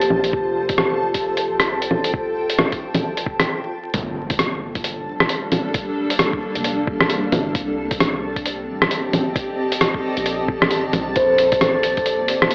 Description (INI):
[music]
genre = future garage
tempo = 133 BPM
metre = 4/4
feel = swing 61% on 16ths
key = G minor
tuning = A4 = 439 Hz
[part]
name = granular cloud pad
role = sustained chords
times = 0.0-12.5 s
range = G3 to A5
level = -25 LUFS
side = equal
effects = built-in reverb, sidechain pumping
[part]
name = soft 808-style bass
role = bass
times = 0.0-12.5 s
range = D1 to C2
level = -36 LUFS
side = equal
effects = tube saturation, sidechain pumping
[part]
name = lo-fi sampler-style drum kit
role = drums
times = 0.0-12.5 s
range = bongos, hi-hat, rim click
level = -19 LUFS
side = equal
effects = none
[part]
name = backwards swelling texture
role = texture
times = 0.0-12.5 s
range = A4 to A5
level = -27 LUFS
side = equal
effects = built-in reverb
[part]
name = electronic kick drum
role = drums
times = 0.3-12.0 s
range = none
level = -27 LUFS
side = equal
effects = none
[part]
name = impact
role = sound effects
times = 3.9-5.7 s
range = none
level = -31 LUFS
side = equal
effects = none
[part]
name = kalimba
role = melody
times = 11.2-11.4 s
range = C5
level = -20 LUFS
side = equal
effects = analog delay
[sound]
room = moderate lush hall reverb, RT60 2.0 s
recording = dry, gritty hardware recording, vinyl crackle, AM radio sound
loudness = -17 LUFS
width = side -31 dB against mid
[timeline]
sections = 0.0-3.9 A section; 3.9-12.5 B section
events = break 3.5-3.9; impact 3.9-5.7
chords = 0.3 F9; 3.9 Gm7; 7.6 Cm7; 11.2 Bbmaj7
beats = | 0.34 0.79 1.24 1.69 | 2.14 2.59 3.04 3.49 | 3.94 4.39 4.85 5.30 | 5.75 6.20 6.65 7.10 | 7.55 8.00 8.46 8.91 | 9.36 9.81 10.26 10.71 | 11.16 11.61 12.06 12.52